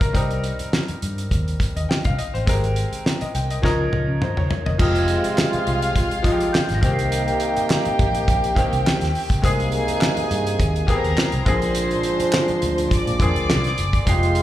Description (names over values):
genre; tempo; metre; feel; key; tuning
lush 1970s-style soul; 103 BPM; 4/4; swing 54% on 16ths; F minor; A4 = 440 Hz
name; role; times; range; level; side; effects
bright baby grand piano; accompaniment; 0.0-14.4 s; D3 to G5; -26 LUFS; left 2 dB; plate reverb
vintage muted fingered electric bass; bass; 0.0-14.4 s; F1 to Db3; -23 LUFS; equal; none
damped 70s drum kit; drums; 0.0-14.4 s; crash cymbal, hi-hat, kick drum, snare drum, toms; -22 LUFS; equal; none
glockenspiel with rubber mallets; texture; 0.0-7.4, 11.5-14.4 s; F6 to C7; -33 LUFS; right 3 dB; plate reverb
warm studio string section; second line; 4.8-14.4 s; F4 to D6; -26 LUFS; right 1 dB; plate reverb
warm trombone section; stabs; 4.8-14.4 s; Ab2 to F4; -24 LUFS; right 1 dB; plate reverb
group handclap; percussion; 5.4-13.6 s; none; -31 LUFS; right 2 dB; none
room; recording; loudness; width
moderate club reverb, RT60 0.8 s; live gig heard through the venue's PA, club reverb; -18 LUFS; side -13 dB against mid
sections
0.0-4.8 A section; 4.8-14.4 B section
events
drum fill 3.6-4.8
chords
0.1 Cm7; 2.5 Abmaj9; 3.6 Db69; 4.8 Fm9; 6.8 Cm7; 9.4 Abmaj9/C; 11.5 Bb9